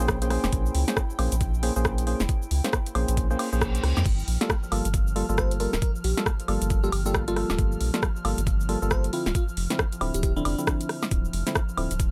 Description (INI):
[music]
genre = UK garage, two-step garage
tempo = 136 BPM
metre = 4/4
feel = swing 61% on 16ths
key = G minor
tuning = A4 = 439 Hz
[part]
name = airy breathy pad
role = sustained chords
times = 0.0-12.1 s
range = F3 to F6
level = -40 LUFS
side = equal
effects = chorus, sidechain pumping
[part]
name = percussive organ stab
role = stabs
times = 0.0-11.9 s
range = D3 to C5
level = -33 LUFS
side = equal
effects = chorus, tape echo
[part]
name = soft dub sub bass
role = bass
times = 0.0-12.1 s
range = D1 to F2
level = -29 LUFS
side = equal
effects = tube saturation
[part]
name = garage drum kit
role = drums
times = 0.0-12.1 s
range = crash cymbal, hi-hat, rim click, shaker, snare drum, woodblock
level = -32 LUFS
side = equal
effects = none
[part]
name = electronic kick drum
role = drums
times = 0.1-12.1 s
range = none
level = -28 LUFS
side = equal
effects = none
[part]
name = reverse cymbal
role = sound effects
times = 3.4-4.1 s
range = none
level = -39 LUFS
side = equal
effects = none
[part]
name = bell-like FM electric piano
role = melody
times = 5.4-10.9 s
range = D4 to C5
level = -34 LUFS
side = equal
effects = chorus
[sound]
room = little or no reverb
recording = dry, gritty hardware recording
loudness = -26 LUFS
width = mono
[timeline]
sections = 0.0-12.1 A section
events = reverse cymbal 3.4-4.1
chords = 0.0 Bbm9; 4.1 Gm9; 9.1 Dm9